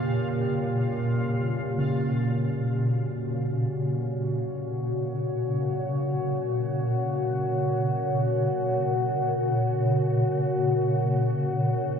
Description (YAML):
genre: dark ambient drone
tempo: free time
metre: none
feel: none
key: F# major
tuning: A4 = 444 Hz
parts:
  - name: deep dark ambient pad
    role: sustained chords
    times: 0.0-12.0 s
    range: A#3 to F#5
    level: -28 LUFS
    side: left 1 dB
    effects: chorus, built-in reverb
  - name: gamelan-type bossed gongs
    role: arpeggios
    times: 0.0-7.8 s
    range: E#2 to C#4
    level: -35 LUFS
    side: right 1 dB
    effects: none
  - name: swarming drone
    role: drone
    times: 0.0-12.0 s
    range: A#2 to C#3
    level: -26 LUFS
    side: equal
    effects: built-in reverb
  - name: bubbling stepped-filter texture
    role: texture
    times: 0.0-1.8 s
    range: E#4 to E#5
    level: -40 LUFS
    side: equal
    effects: chorus, built-in reverb
room: wet huge ambient reverb, RT60 8.6 s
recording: dark, warm production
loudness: -24 LUFS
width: side -7 dB against mid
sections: 0.0-1.8 A section; 1.8-12.0 B section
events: none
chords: 0.0 A#m; 1.8 F#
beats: free time